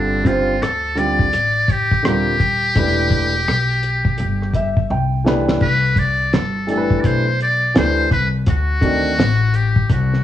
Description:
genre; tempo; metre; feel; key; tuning
hip hop, jazz-hop; 84 BPM; 4/4; swing 63% on 16ths; C major; A4 = 440 Hz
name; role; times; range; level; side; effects
trumpet with metal mute; melody; 0.0-10.2 s; D4 to D5; -19 LUFS; left 1 dB; cassette tape
dark concert grand piano; accompaniment; 0.0-9.1 s; D3 to G5; -20 LUFS; right 1 dB; cassette tape
upright bass; bass; 0.0-10.2 s; Eb1 to D2; -20 LUFS; left 1 dB; none
cloth-damped thuddy drum kit; drums; 0.2-10.2 s; crash cymbal, hi-hat, kick drum, rim click, snare drum; -18 LUFS; equal; cassette tape
room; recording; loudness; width
studio ambience; home recording on cassette; -15 LUFS; side -12 dB against mid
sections
0.0-5.6 A section; 5.6-10.2 B section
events
grand piano fill 4.2-5.6; drum fill 4.9-5.6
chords
0.0 G9sus4; 2.8 Em7; 4.9 C69; 5.6 Cmaj13; 8.5 D7b9

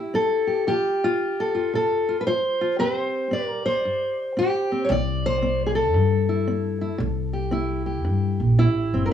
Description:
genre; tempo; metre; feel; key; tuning
acoustic country blues, solo or duo; 113 BPM; 4/4; swing 63% on 8ths; C major; A4 = 440 Hz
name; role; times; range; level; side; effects
fingerpicked steel-string acoustic guitar; melody; 0.0-9.1 s; G2 to D5; -22 LUFS; equal; none
upright bass; bass; 4.9-9.1 s; G1 to G2; -22 LUFS; left 1 dB; none
room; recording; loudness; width
moderate studio ambience, RT60 0.5 s; studio ambience; -20 LUFS; side -9 dB against mid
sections
0.0-9.1 A section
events
none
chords
0.0 C; 0.7 F5; 2.8 C

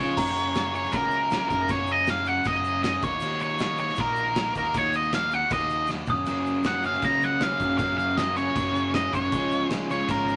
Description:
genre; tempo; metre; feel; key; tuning
indie rock; 157 BPM; 4/4; straight; unclear; A4 = 440 Hz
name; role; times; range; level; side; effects
octave-fuzz lead guitar; melody; 0.0-10.4 s; Ab4 to Bb5; -28 LUFS; equal; distortion
crunchy overdriven guitar; riff; 0.0-10.4 s; Gb2 to Gb4; -34 LUFS; equal; none
overdriven semi-hollow guitar; riff; 0.0-0.2, 6.3-10.4 s; Gb2 to Db4; -32 LUFS; equal; none
growling picked electric bass; bass; 0.0-10.4 s; Ab1 to Gb2; -37 LUFS; equal; overdrive
glockenspiel with rubber mallets; second line; 0.2-10.4 s; Bb5 to Eb6; -38 LUFS; equal; none
loose indie drum kit; drums; 0.2-10.2 s; crash cymbal, kick drum, snare drum, toms; -34 LUFS; equal; none
tube shaker; percussion; 0.2-10.4 s; none; -58 LUFS; equal; none
room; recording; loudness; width
moderate studio ambience, RT60 0.5 s; none; -25 LUFS; mono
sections
0.2-10.4 A section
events
drum fill 5.9-6.3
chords
0.2 Gb; 3.0 Ebm7; 6.1 Gbmaj7; 9.3 Db

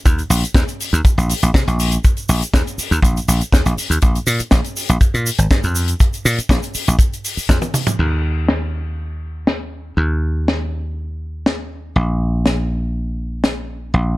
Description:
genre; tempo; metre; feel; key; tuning
nu-disco, nu disco; 121 BPM; 4/4; straight; unclear; A4 = 439 Hz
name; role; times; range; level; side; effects
dry thumbed slap bass; bass; 0.1-14.2 s; Ab1 to C3; -18 LUFS; equal; none
kick drum; drums; 0.1-7.6 s; none; -15 LUFS; equal; none
tight funk drum kit; drums; 0.1-13.5 s; crash cymbal, hi-hat, shaker, snare drum, toms; -20 LUFS; left 1 dB; low-pass filter on hats, low-pass filter on toms, low-pass filter on cymbals, low-pass filter on snare, low-pass filter on perc, low-pass filter on room
room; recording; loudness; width
little or no reverb; none; -15 LUFS; side -19 dB against mid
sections
0.0-8.0 A section; 8.0-14.2 B section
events
drum fill 7.5-8.0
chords
none

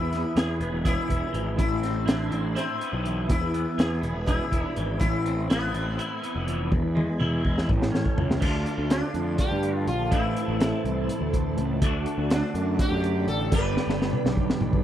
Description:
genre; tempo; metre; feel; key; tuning
psychedelic rock; 246 BPM (eighths); 7/8; straight; A harmonic minor; A4 = 440 Hz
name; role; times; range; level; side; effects
sitar; melody; 0.0-14.2 s; B3 to B4; -31 LUFS; equal; slapback echo
ensemble organ-string; sustained chords; 0.0-14.8 s; A4 to C6; -38 LUFS; right 5 dB; phaser, ensemble chorus
clean electric guitar; riff; 0.0-14.8 s; E2 to G#4; -30 LUFS; equal; rotary speaker, double-tracked left and right
fuzz picked electric bass; bass; 0.0-14.8 s; E1 to G2; -28 LUFS; equal; overdrive
crunchy breakbeat drum kit; drums; 0.1-14.8 s; crash cymbal, hi-hat, kick drum, snare drum, toms; -26 LUFS; equal; none
room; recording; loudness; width
little or no reverb; dry, close 1970s-style studio recording; -23 LUFS; side -11 dB against mid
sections
0.0-8.4 A section; 8.4-14.8 B section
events
drum fill 6.7-8.4, 13.8-14.8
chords
0.0 E; 1.6 Amadd9; 3.3 E; 5.0 Amadd9; 6.7 E; 7.7 A7; 8.4 Dm; 10.1 Am; 11.8 D; 13.5 G

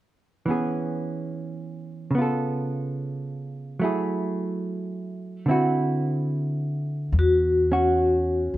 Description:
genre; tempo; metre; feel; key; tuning
jazz ballad; 72 BPM; 4/4; swing 68% on 8ths; E major; A4 = 438 Hz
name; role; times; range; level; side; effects
hollow-body jazz guitar; accompaniment; 0.5-8.6 s; C#3 to A4; -25 LUFS; right 1 dB; none
upright bass; bass; 7.1-8.6 s; D#2 to E2; -24 LUFS; left 1 dB; none
vibraphone with medium hard mallets; melody; 7.2-8.5 s; F#4; -21 LUFS; left 2 dB; none
room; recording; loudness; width
light reverb; minimal, uncompressed stereo recording; -22 LUFS; side -15 dB against mid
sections
0.5-7.1 A section; 7.1-8.6 B section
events
none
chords
0.5 E6; 2.1 C#aug7; 3.8 F#m9; 5.5 D9; 7.1 Esus2

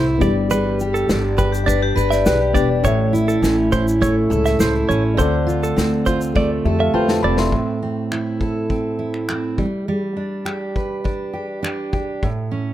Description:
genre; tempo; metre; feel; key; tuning
acoustic pop; 102 BPM; 4/4; straight; A minor; A4 = 440 Hz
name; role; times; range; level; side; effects
fingerpicked steel-string acoustic guitar; accompaniment; 0.0-12.7 s; A2 to C5; -20 LUFS; right 2 dB; none
reed electric piano; accompaniment; 0.0-7.7 s; B3 to C6; -25 LUFS; left 8 dB; none
direct-recorded clean electric guitar; arpeggios; 0.0-7.4 s; A4 to E5; -24 LUFS; right 4 dB; none
upright bass; bass; 0.0-7.5 s; E1 to F2; -22 LUFS; left 1 dB; none
unplugged drum kit; drums; 0.2-12.4 s; finger snaps, kick drum, shaker, snare drum; -23 LUFS; left 1 dB; none
vibraphone with medium hard mallets; second line; 1.5-2.8 s; G4 to D5; -23 LUFS; left 6 dB; tape echo
room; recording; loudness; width
little or no reverb; faint mains hum; -17 LUFS; side -13 dB against mid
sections
0.0-7.5 A section; 7.5-12.7 B section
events
drum fill 6.4-7.5; reed electric piano fill 6.6-7.5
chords
0.2 G; 2.8 A; 5.2 Dm7; 7.5 Am; 9.6 G; 12.2 A

